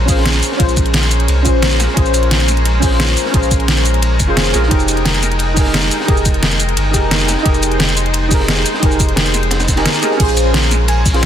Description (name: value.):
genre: liquid drum and bass.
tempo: 175 BPM.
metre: 4/4.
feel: straight.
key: Bb dorian.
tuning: A4 = 440 Hz.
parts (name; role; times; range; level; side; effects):
deep mellow chord stab; accompaniment; 0.0-11.3 s; Db4 to C5; -18 LUFS; right 1 dB; chorus, dub echo.
lush unison pad; sustained chords; 0.0-11.3 s; Ab3 to C6; -22 LUFS; left 1 dB; chorus.
warm sub bass; bass; 0.0-11.3 s; F1 to C2; -16 LUFS; equal; none.
crunchy breakbeat drum kit; drums; 0.1-11.3 s; hi-hat, ride cymbal, snare drum; -24 LUFS; equal; high-pass filter on cymbals, high-pass filter on hats, high-pass filter on snare, high-pass filter on room.
electronic kick drum; drums; 0.1-11.1 s; none; -15 LUFS; equal; overdrive.
pop drum kit; drums; 0.1-11.3 s; crash cymbal, hi-hat, shaker, snare drum; -18 LUFS; equal; overdrive.
harp-like synth pluck; arpeggios; 10.2-11.0 s; Ab4 to Ab5; -22 LUFS; right 6 dB; chorus, digital delay.
room: little or no reverb.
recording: dense, heavily limited modern master.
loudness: -11 LUFS.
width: side -10 dB against mid.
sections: 0.0-10.2 A section; 10.2-11.3 A section.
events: drop 0.0-10.2, 10.2-11.3.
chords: 0.0 Bbm9; 4.7 Fm11; 10.2 Bbm9.